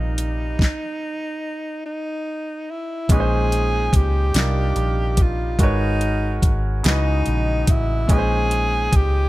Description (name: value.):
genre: slow six-eight R&B.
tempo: 48 BPM (dotted quarters).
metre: 6/8.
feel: straight.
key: Bb dorian.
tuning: A4 = 440 Hz.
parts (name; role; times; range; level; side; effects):
breathy tenor saxophone; melody; 0.0-9.3 s; Eb4 to Ab4; -25 LUFS; equal; tape echo.
warm grand piano; accompaniment; 0.0-9.3 s; Bb2 to Eb5; -26 LUFS; right 1 dB; none.
vintage muted fingered electric bass; bass; 0.0-9.3 s; Ab1 to Db2; -21 LUFS; equal; none.
smooth R&B drum kit; drums; 0.2-9.1 s; hi-hat, kick drum, snare drum; -18 LUFS; equal; none.
room: small room ambience.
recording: none.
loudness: -18 LUFS.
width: side -17 dB against mid.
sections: 0.0-3.1 A section; 3.1-9.3 B section.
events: stop 0.6-3.1.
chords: 0.0 Cm11; 0.6 N.C.; 3.1 Bbm11; 4.3 Cm11; 5.6 Abm11; 6.8 Dbm11; 8.1 Bbm11.